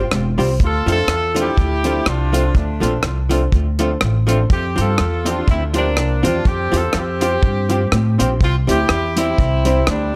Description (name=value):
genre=ska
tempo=123 BPM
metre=4/4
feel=swing 56% on 8ths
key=F major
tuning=A4 = 440 Hz
part: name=warm horn section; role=melody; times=0.0-10.2 s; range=G3 to A4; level=-24 LUFS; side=equal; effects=tape echo
part: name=warm upright piano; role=stabs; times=0.0-9.8 s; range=C4 to C5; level=-26 LUFS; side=equal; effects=tape echo
part: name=upright bass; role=bass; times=0.0-10.1 s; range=E1 to A2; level=-21 LUFS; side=equal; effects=none
part: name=deep reggae drum kit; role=drums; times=0.1-10.0 s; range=hi-hat, kick drum, rim click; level=-21 LUFS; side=equal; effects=none
part: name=hollow-body jazz guitar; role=accompaniment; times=0.4-9.8 s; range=F3 to G4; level=-27 LUFS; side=equal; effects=tape echo
room=light reverb, small room ambience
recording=none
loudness=-17 LUFS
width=mono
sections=0.0-10.2 A section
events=none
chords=0.0 Fsus2; 0.6 Dm7; 4.5 Fsus2; 8.4 C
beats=0.12 | 0.60 1.09 1.58 2.06 | 2.55 3.04 3.52 4.01 | 4.50 4.99 5.47 5.96 | 6.45 6.94 7.43 7.92 | 8.41 8.89 9.38 9.87